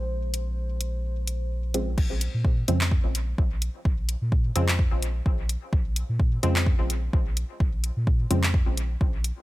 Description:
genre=dub techno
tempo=128 BPM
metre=4/4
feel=swing 55% on 16ths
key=Bb minor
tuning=A4 = 440 Hz
part: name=deep dark ambient pad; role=sustained chords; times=0.0-1.9 s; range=Ab3 to C5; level=-40 LUFS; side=left 2 dB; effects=chorus, built-in reverb, sidechain pumping
part: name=filtered dub chord stab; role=stabs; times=0.0-8.4 s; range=Db3 to C4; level=-30 LUFS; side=equal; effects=chorus, phaser, sidechain pumping, dub echo
part: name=soft dub sub bass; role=bass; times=0.0-9.3 s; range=Bb1 to Bb2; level=-27 LUFS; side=equal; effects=sidechain pumping
part: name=deep house drum kit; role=drums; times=0.3-9.3 s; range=crash cymbal, handclaps, hi-hat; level=-30 LUFS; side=left 1 dB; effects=dub echo
part: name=electronic kick drum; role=drums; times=2.0-9.1 s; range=none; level=-23 LUFS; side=equal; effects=none
room=digital ambience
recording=none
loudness=-23 LUFS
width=side -17 dB against mid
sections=0.0-2.0 A section; 2.0-9.4 B section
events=filter sweep on synth stab 0.0-2.0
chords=0.0 Bbm9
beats=| 0.10 0.57 1.04 1.51 | 1.98 2.45 2.92 3.38 | 3.85 4.32 4.79 5.26 | 5.73 6.20 6.67 7.13 | 7.60 8.07 8.54 9.01

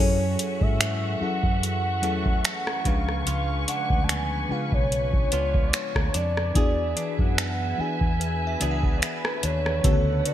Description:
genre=contemporary R&B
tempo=73 BPM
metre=4/4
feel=swing 54% on 16ths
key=unclear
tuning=A4 = 440 Hz
part: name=warm velvety synth lead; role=melody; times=0.0-10.3 s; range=B4 to A5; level=-29 LUFS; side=equal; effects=chorus, digital delay
part: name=mellow FM electric piano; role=accompaniment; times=0.0-10.3 s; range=C#3 to B4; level=-30 LUFS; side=left 3 dB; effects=chorus
part: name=muted studio string section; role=sustained chords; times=0.0-10.3 s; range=D4 to C#6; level=-34 LUFS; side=equal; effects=none
part: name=direct-recorded clean electric guitar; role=arpeggios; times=0.0-10.3 s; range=F#2 to A4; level=-35 LUFS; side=right 7 dB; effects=wide subtle chorus
part: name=vintage muted fingered electric bass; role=bass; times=0.0-10.2 s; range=B1 to G#2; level=-28 LUFS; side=equal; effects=none
part: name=synth chime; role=texture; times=0.0-1.8, 8.2-10.3 s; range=B4 to G#5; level=-41 LUFS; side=left 2 dB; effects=ensemble chorus, phaser, digital delay
part: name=booming analog drum machine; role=drums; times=0.4-10.3 s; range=finger snaps, hi-hat, kick drum, rim click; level=-24 LUFS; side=equal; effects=gated reverb
room=light reverb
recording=bright 1980s-style digital production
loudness=-22 LUFS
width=side -11 dB against mid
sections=0.0-10.3 A section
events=none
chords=0.0 F#m7; 2.9 C#7b9; 6.6 E7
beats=0.80 1.62 2.44 | 3.27 4.09 4.91 5.73 | 6.55 7.38 8.20 9.02 | 9.84

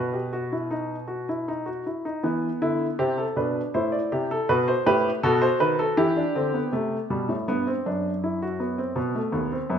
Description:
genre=classical, baroque-style 3-part fugue for grand piano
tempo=80 BPM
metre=3/4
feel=straight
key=E minor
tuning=A4 = 440 Hz
part: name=warm baby grand piano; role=solo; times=0.0-9.8 s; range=D#2 to D5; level=-23 LUFS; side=equal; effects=none
room=moderate recital hall reverb, RT60 1.3 s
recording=minimal, uncompressed stereo recording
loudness=-23 LUFS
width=side -8 dB against mid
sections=0.0-2.3 A section; 2.3-6.7 B section; 6.7-9.8 A section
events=none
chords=0.0 B; 2.3 Em; 3.8 Am; 4.5 B7; 6.0 Em; 6.7 C5; 8.2 Cmaj7#11/F#; 9.0 B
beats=0.72 1.49 | 2.25 3.01 3.75 | 4.50 5.23 5.98 | 6.73 7.48 8.24 | 8.98 9.71

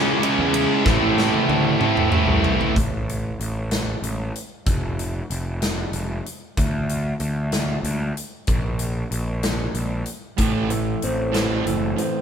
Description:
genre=quiet-loud alternative rock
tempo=63 BPM (dotted quarters)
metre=6/8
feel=straight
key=unclear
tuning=A4 = 439 Hz
part: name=warm brass ensemble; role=sustained chords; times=0.0-2.7 s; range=E4 to A5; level=-33 LUFS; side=right 3 dB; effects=none
part: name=distorted electric guitar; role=riff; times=0.0-2.7 s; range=A2 to C#4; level=-23 LUFS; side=left 8 dB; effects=distortion
part: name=distorted electric guitar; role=riff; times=0.0-2.7 s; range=A2 to E4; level=-24 LUFS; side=equal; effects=distortion
part: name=fuzz guitar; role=riff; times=0.0-2.7, 10.4-12.2 s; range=A2 to C#4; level=-23 LUFS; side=right 6 dB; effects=distortion
part: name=big rock drum kit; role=drums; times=0.2-12.1 s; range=hi-hat, kick drum, ride cymbal, snare drum, toms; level=-25 LUFS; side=equal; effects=none
part: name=fuzz picked electric bass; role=bass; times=0.4-11.9 s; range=F1 to A2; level=-25 LUFS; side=equal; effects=overdrive
part: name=electric guitar through a small old amp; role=arpeggios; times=10.4-12.2 s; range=A2 to C4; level=-25 LUFS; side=equal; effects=none
room=light reverb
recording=band playing live in one room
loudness=-20 LUFS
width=side -8 dB against mid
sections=0.0-2.8 A section; 2.8-12.2 B section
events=drum fill 0.9-2.8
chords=0.0 C#m; 0.9 Am; 2.8 N.C.; 10.4 Am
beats=| 0.85 1.80 | 2.75 3.71 | 4.66 5.61 | 6.57 7.53 | 8.48 9.44 | 10.39 11.35

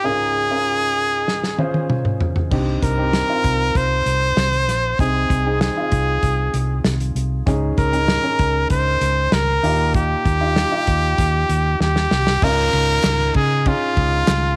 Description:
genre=piano-driven pop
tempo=97 BPM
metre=4/4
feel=straight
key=unclear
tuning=A4 = 438 Hz
part: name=brilliant trumpet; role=melody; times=0.0-14.6 s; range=F4 to C5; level=-22 LUFS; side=equal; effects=plate reverb
part: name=warm grand piano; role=accompaniment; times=0.0-14.6 s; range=Db2 to C5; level=-28 LUFS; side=equal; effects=plate reverb
part: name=loose indie drum kit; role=drums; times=1.3-14.4 s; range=crash cymbal, hi-hat, kick drum, ride cymbal, snare drum, toms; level=-24 LUFS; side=equal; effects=cassette tape
part: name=vintage muted fingered electric bass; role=bass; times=2.5-14.5 s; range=Bb1 to Db3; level=-23 LUFS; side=equal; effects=none
part: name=downlifter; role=sound effects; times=12.4-14.6 s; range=none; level=-36 LUFS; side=equal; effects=none
part: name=group handclap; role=percussion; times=13.0-14.4 s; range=none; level=-33 LUFS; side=equal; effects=none
room=light reverb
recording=home recording on cassette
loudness=-19 LUFS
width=mono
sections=0.0-2.5 A section; 2.5-12.4 B section; 12.4-14.6 C section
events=drum fill 1.3-2.5, 11.8-12.4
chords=0.0 Db6; 2.5 Cm; 5.0 Ab/C; 7.5 Dbsus2; 9.6 Ebadd9; 12.4 Dbadd9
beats=| 0.04 0.66 1.28 1.90 | 2.52 3.14 3.76 4.38 | 4.99 5.61 6.23 6.85 | 7.47 8.09 8.71 9.33 | 9.95 10.57 11.19 11.81 | 12.43 13.04 13.66 14.28

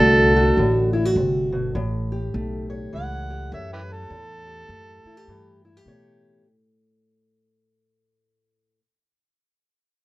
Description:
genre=acoustic country blues, solo or duo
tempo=102 BPM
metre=4/4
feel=swing 61% on 8ths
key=A mixolydian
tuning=A4 = 442 Hz
part: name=overdriven harmonica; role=melody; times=0.0-5.6 s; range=E4 to F#5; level=-22 LUFS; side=right 1 dB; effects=plate reverb
part: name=fingerpicked steel-string acoustic guitar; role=accompaniment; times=0.0-8.8 s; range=A2 to C#5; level=-22 LUFS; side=equal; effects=none
part: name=upright bass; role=bass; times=0.0-6.4 s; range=G1 to B2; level=-25 LUFS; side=equal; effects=none
room=moderate studio reverb, RT60 0.6 s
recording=worn, warbling old tape, cassette tape, warbly pitch drift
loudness=-19 LUFS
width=side -18 dB against mid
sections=0.0-6.4 A section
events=fade-out 0.0-6.4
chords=0.0 D7; 1.8 A7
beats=0.57 1.16 | 1.75 2.34 2.93 3.52 | 4.10 4.69 5.28 5.86

